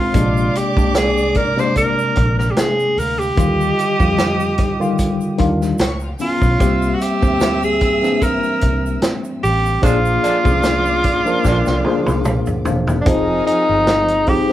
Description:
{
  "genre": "lush 1970s-style soul",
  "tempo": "74 BPM",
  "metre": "4/4",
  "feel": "swing 54% on 16ths",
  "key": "unclear",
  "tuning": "A4 = 440 Hz",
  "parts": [
    { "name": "clear tenor saxophone", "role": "melody", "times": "0.0-14.5 s", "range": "D4 to C5", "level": "-18 LUFS", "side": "right 1 dB", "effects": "none" },
    { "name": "warm studio string section", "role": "second line", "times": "0.0-14.3 s", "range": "F4 to E6", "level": "-28 LUFS", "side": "equal", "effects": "none" },
    { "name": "mellow tine electric piano", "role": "accompaniment", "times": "0.0-14.5 s", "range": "C3 to G5", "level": "-20 LUFS", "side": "left 2 dB", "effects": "medium stereo tremolo" },
    { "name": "vintage muted fingered electric bass", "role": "bass", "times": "0.1-14.4 s", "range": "E1 to F2", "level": "-22 LUFS", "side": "equal", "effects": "none" },
    { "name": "vintage drum kit", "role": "drums", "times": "0.1-14.5 s", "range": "hi-hat, kick drum, snare drum, toms", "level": "-20 LUFS", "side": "equal", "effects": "none" },
    { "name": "tube shaker", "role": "percussion", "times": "0.2-13.1 s", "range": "none", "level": "-40 LUFS", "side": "right 6 dB", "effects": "none" },
    { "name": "warm horn section", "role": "stabs", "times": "9.8-14.2 s", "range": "D3 to Bb4", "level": "-25 LUFS", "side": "right 2 dB", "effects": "none" }
  ],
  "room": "moderate studio reverb, RT60 0.5 s",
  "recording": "band playing live in one room",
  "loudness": "-14 LUFS",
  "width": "side -13 dB against mid",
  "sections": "0.0-13.1 A section; 13.1-14.5 B section",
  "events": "band accent 9.8-13.1; drum fill 11.4-13.1",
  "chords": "0.1 Bb9; 3.4 Ebmaj9; 5.8 Db9; 6.6 C7; 9.8 Bb7; 13.1 Fm7"
}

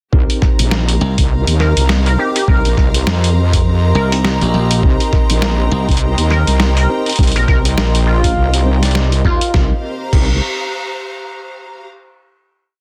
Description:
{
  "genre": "glitch hop",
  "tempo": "102 BPM",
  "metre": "4/4",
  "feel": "swing 58% on 16ths",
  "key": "C minor",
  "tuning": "A4 = 440 Hz",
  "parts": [
    { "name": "dark analog pad", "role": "sustained chords", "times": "0.1-9.8 s", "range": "C4 to C6", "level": "-28 LUFS", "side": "equal", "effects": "chorus, sidechain pumping" },
    { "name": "tine electric piano", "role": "stabs", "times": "0.1-10.4 s", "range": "C4 to D5", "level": "-27 LUFS", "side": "equal", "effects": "overdrive, sidechain pumping, digital delay" },
    { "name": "wobble bass", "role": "bass", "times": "0.1-10.4 s", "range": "Bb1 to F2", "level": "-16 LUFS", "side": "equal", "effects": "chorus, tube saturation" },
    { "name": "electronic kick drum", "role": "drums", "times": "0.1-10.3 s", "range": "none", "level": "-16 LUFS", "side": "equal", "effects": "none" },
    { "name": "rich studio string section", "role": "texture", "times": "0.1-11.9 s", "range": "G4 to Bb5", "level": "-28 LUFS", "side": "equal", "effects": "sidechain pumping" },
    { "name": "boom bap sampler-style drum kit", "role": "drums", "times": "0.3-10.3 s", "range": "crash cymbal, hi-hat, snare drum", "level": "-22 LUFS", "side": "equal", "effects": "none" },
    { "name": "glassy slap bass", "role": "bass", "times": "1.0-9.4 s", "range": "Bb1 to Eb2", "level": "-17 LUFS", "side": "equal", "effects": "tube saturation" },
    { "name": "sync lead", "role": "melody", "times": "1.6-9.5 s", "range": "F4 to Bb4", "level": "-23 LUFS", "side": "equal", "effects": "lush chorus, digital delay" }
  ],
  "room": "little or no reverb",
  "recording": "dense, heavily limited modern master",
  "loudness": "-14 LUFS",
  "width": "mono",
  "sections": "0.1-9.5 drop; 9.5-11.9 final chord",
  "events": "drop 0.1-9.5",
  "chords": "0.1 Cm7"
}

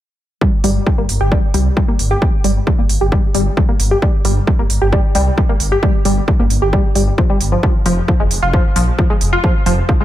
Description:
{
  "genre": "driving peak-time techno",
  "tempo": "133 BPM",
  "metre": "4/4",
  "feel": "straight",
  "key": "G phrygian",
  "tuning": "A4 = 444 Hz",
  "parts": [
    { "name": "tight sequenced synth", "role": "riff", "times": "0.4-10.0 s", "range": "F3 to G4", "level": "-18 LUFS", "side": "equal", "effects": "chorus, sidechain pumping, ping-pong delay" },
    { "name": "electronic kick drum", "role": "drums", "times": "0.4-10.0 s", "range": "none", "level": "-14 LUFS", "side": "equal", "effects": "none" },
    { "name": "dark detuned saw bass", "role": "bass", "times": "0.6-10.0 s", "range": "F1 to C2", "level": "-17 LUFS", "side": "equal", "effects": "sidechain pumping" },
    { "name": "electronic hi-hat", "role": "drums", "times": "0.6-9.8 s", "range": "none", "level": "-23 LUFS", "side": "right 4 dB", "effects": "sidechain pumping on hats" }
  ],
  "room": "light reverb, digital ambience",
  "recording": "none",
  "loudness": "-12 LUFS",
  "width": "side -13 dB against mid",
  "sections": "0.4-10.0 A section",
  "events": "none",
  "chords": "none"
}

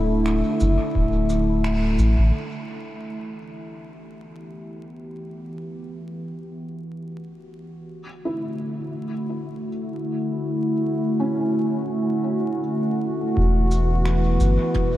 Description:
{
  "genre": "ambient dub",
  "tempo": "free time",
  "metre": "none",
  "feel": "none",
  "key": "E dorian",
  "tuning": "A4 = 440 Hz",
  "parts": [
    { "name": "warbly tape-like pad", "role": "sustained chords", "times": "0.0-15.0 s", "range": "D3 to G4", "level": "-24 LUFS", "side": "equal", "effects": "chorus, built-in reverb" },
    { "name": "felt-muted upright piano", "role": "arpeggios", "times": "0.0-2.4, 8.3-13.4 s", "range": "C#4 to E4", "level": "-35 LUFS", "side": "equal", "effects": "ensemble chorus, ping-pong delay" },
    { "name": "soft dub sub bass", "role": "bass", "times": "0.0-2.3, 13.4-14.6 s", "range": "D1 to A1", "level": "-20 LUFS", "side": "equal", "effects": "none" },
    { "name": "jazz brush drum kit", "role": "drums", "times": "0.3-2.1, 13.7-14.9 s", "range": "finger snaps, shaker, toms", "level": "-36 LUFS", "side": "right 1 dB", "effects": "dub echo" },
    { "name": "electronic kick drum", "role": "drums", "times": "1.0-1.1, 13.4-14.9 s", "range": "none", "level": "-25 LUFS", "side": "equal", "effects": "none" }
  ],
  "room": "wet huge ambient reverb, RT60 8.7 s",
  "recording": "dreamy mix soaked in reverb, vinyl crackle",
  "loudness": "-20 LUFS",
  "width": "side -14 dB against mid",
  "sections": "0.0-2.3 A section; 2.3-13.4 B section; 13.4-15.0 C section",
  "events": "band accent 1.6-2.0; filter sweep on ambient pad 2.3-13.4",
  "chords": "0.0 Dmaj7; 2.3 Emadd9; 7.8 Dmaj7; 13.4 Esus2"
}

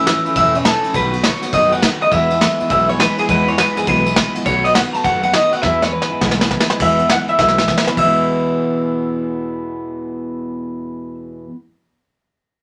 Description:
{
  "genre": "rockabilly",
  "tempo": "205 BPM",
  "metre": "4/4",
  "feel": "swing 64% on 8ths",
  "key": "E major",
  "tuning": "A4 = 440 Hz",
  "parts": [
    { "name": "electric guitar through a small old amp", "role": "melody", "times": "0.0-11.1 s", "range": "G#4 to A5", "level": "-18 LUFS", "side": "equal", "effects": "none" },
    { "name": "picked steel-string acoustic guitar", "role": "accompaniment", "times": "0.0-11.6 s", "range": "E2 to F#4", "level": "-23 LUFS", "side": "equal", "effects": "none" },
    { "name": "upright bass", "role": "bass", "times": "0.0-11.1 s", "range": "E1 to E2", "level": "-29 LUFS", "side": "equal", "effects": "none" },
    { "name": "vintage brush drum kit", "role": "drums", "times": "0.1-8.1 s", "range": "crash cymbal, hi-hat, kick drum, ride cymbal, snare drum", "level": "-21 LUFS", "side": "equal", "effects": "none" }
  ],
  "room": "light reverb",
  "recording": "none",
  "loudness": "-16 LUFS",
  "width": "mono",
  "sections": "0.0-6.8 A section; 6.8-8.0 B section; 8.0-10.3 C section",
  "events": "drum fill 5.6-6.8, 7.4-8.0",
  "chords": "0.0 A; 0.9 B7; 2.1 E; 4.5 B7; 5.6 E"
}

